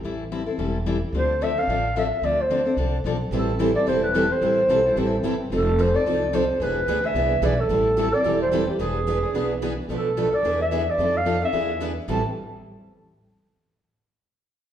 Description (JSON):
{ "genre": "acoustic string swing (jazz manouche)", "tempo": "219 BPM", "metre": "4/4", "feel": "swing 57% on 8ths", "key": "A minor", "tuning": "A4 = 440 Hz", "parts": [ { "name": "picked steel-string acoustic guitar", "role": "accompaniment", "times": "0.0-12.2 s", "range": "A2 to A4", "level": "-27 LUFS", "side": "left 4 dB", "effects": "none" }, { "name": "upright bass", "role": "bass", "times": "0.0-12.2 s", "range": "E1 to F2", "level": "-28 LUFS", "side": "equal", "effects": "none" }, { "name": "breathy clarinet", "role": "melody", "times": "1.2-12.2 s", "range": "G4 to A5", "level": "-23 LUFS", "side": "equal", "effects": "none" }, { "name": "picked steel-string acoustic guitar", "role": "accompaniment", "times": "3.3-12.2 s", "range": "A2 to B4", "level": "-27 LUFS", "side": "right 4 dB", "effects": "none" } ], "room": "wet large studio reverb, RT60 1.5 s", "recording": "band playing live in one room", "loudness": "-20 LUFS", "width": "side -10 dB against mid", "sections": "0.0-9.9 A section; 9.9-12.1 B section; 12.1-13.2 C section", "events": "none", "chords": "0.0 Am7; 1.1 Dm7; 3.3 Am7; 5.5 F7; 6.6 E7; 7.7 Am7; 8.8 E7; 9.9 Bm7b5; 10.4 E7; 11.0 F7; 11.5 E7; 12.1 Am7" }